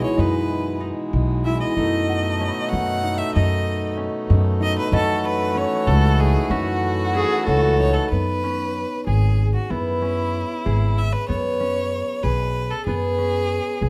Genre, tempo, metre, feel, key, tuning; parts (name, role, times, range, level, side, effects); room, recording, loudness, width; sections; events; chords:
contemporary instrumental, chamber music in an uneven meter; 189 BPM (eighths); 5/8; straight; A4 = 440 Hz
clear violin; melody; 0.0-13.9 s; E4 to F#5; -28 LUFS; equal
hand-pumped harmonium; sustained chords; 0.0-8.1 s; B2 to F#4; -28 LUFS; equal
concert harp; arpeggios; 0.0-13.9 s; B3 to G#4; -29 LUFS; equal
upright bass; bass; 0.0-13.9 s; G#1 to F#2; -24 LUFS; equal
worn celesta; texture; 0.0-8.4 s; C#5 to B5; -35 LUFS; equal
clear viola; second line; 7.1-8.1 s; G#4 to A4; -24 LUFS; equal
light reverb; close, detailed microphones; -21 LUFS; mono
0.0-8.1 A section; 8.1-13.9 A section
0.0 Emaj7; 1.8 B7/F#; 4.9 F#m7; 8.1 C#m7; 11.3 Bsus2